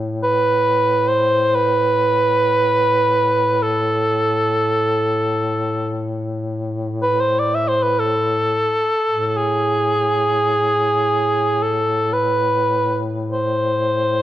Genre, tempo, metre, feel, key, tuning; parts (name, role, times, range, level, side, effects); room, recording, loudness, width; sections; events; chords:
caucasian folk, Caucasian lament; free time; A harmonic minor; A4 = 440 Hz
mellow duduk; drone; 0.0-14.2 s; A2; -23 LUFS; left 2 dB
warm cor anglais; melody; 0.2-14.2 s; G#4 to E5; -16 LUFS; right 1 dB
moderate scoring stage reverb, RT60 1.4 s; dark, warm production; -16 LUFS; side -13 dB against mid
0.0-14.2 A section